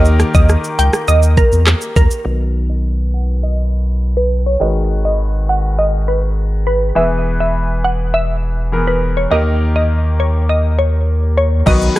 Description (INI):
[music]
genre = dancehall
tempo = 102 BPM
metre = 4/4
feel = straight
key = unclear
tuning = A4 = 440 Hz
[part]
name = glassy wavetable pluck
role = melody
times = 0.0-11.8 s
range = A#4 to G5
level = -18 LUFS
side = right 1 dB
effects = chorus, low-pass filter, tape echo
[part]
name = bright concert grand piano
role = accompaniment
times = 0.0-12.0 s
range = D#3 to B4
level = -22 LUFS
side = left 2 dB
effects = low-pass filter
[part]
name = saturated sub bass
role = bass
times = 0.0-11.9 s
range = E1 to E2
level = -15 LUFS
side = equal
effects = none
[part]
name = island pop drum kit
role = drums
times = 0.1-2.2, 11.7-12.0 s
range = crash cymbal, handclaps, hi-hat, kick drum, rim click, shaker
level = -14 LUFS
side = equal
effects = none
[sound]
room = digital ambience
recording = none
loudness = -13 LUFS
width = side -16 dB against mid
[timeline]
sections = 0.0-2.3 A section; 2.3-11.7 B section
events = filter sweep 2.3-11.7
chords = 0.0 D#; 2.3 B; 4.6 G#m7; 7.0 E; 9.3 D#